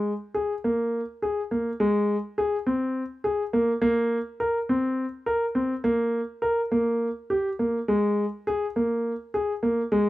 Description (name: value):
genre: contemporary instrumental, contemporary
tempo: 207 BPM (eighths)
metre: 7/8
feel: straight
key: unclear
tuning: A4 = 438 Hz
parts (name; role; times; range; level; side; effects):
- warm grand piano; solo; 0.0-10.1 s; Ab3 to Bb4; -23 LUFS; equal; none
room: light reverb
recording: close, detailed microphones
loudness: -23 LUFS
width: side -16 dB against mid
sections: 0.0-10.1 A section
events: none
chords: none